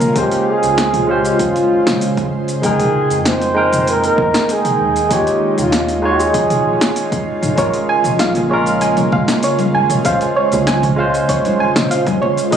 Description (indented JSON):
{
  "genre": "sunset chillout",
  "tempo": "97 BPM",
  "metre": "4/4",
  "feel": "straight",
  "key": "unclear",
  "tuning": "A4 = 440 Hz",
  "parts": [
    { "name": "breathy flugelhorn", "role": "melody", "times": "0.0-7.3 s", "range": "F4 to C5", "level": "-18 LUFS", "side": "right 1 dB", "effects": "tape echo" },
    { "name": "barky tine electric piano", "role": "accompaniment", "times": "0.0-12.6 s", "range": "Ab3 to G5", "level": "-18 LUFS", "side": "equal", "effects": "medium stereo tremolo, auto-pan, digital delay" },
    { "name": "ethereal airy pad", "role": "sustained chords", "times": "0.0-12.6 s", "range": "Db3 to G5", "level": "-21 LUFS", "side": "right 1 dB", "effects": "ensemble chorus, built-in reverb, phaser" },
    { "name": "round analog bass", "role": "bass", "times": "0.0-12.6 s", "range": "Ab1 to Ab2", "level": "-25 LUFS", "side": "equal", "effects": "none" },
    { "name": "deep house drum kit", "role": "drums", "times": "0.0-12.6 s", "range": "hi-hat, shaker, snare drum, toms", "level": "-20 LUFS", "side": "equal", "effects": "overdrive" },
    { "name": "electronic kick drum", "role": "drums", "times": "0.2-12.6 s", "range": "none", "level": "-22 LUFS", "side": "equal", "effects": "overdrive" },
    { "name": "soft round pluck", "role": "arpeggios", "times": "7.6-12.6 s", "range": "Db5 to Ab5", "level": "-18 LUFS", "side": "right 4 dB", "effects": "chorus, digital delay" },
    { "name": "congas", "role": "percussion", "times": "8.2-12.4 s", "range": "none", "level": "-22 LUFS", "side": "left 3 dB", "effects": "none" }
  ],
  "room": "moderate plate reverb, RT60 1.9 s, digital ambience",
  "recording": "recorded on a phone in the room, club reverb",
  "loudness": "-13 LUFS",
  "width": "side -8 dB against mid",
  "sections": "0.0-12.6 A section",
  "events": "none",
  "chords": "0.2 Dbmaj7; 2.6 Fm11; 5.1 Eb9sus4; 7.6 Bbm7; 10.1 Dbmaj7"
}